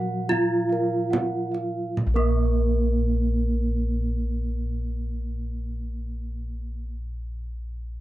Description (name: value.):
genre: Javanese gamelan.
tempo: 35 BPM.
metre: 4/4.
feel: straight.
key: unclear.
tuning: A4 = 441 Hz.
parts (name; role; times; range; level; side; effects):
gamelan-type bronze metallophone; melody; 0.0-6.9 s; Bb3 to Gb4-20c; -27 LUFS; right 1 dB; none.
gamelan-type bronze metallophone; accompaniment; 0.0-6.9 s; Gb3-20c to Bb3; -32 LUFS; right 3 dB; none.
gamelan-type bronze metallophone; arpeggios; 0.0-6.9 s; Bb4 to Gb5-20c; -33 LUFS; right 5 dB; none.
gamelan-type bossed gongs; bass; 0.0-6.8 s; Bb1 to Db4-30c; -27 LUFS; left 1 dB; none.
gamelan-type bossed gongs; arpeggios; 0.3-6.9 s; Bb4 to F5-30c; -36 LUFS; left 6 dB; none.
kendang; percussion; 0.3-2.8 s; none; -29 LUFS; right 2 dB; none.
room: light reverb.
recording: dry, close 1970s-style studio recording.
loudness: -23 LUFS.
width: side -15 dB against mid.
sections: 0.0-2.0 A section; 2.0-8.0 B section.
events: slowing down 0.0-2.0.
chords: none.